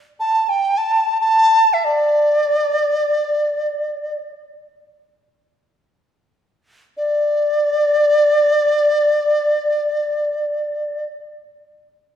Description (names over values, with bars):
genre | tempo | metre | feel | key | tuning
chinese traditional | free time | none | none | unclear | A4 = 444 Hz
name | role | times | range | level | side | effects
large dizi | solo | 0.2-4.2, 7.0-11.1 s | D5 to A5 | -15 LUFS | equal | none
room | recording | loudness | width
wet recital hall reverb, RT60 1.7 s | recorded in a church or concert hall | -15 LUFS | side -9 dB against mid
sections
0.0-7.0 A section; 7.0-11.0 B section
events
slowing down 3.1-7.0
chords
none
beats
free time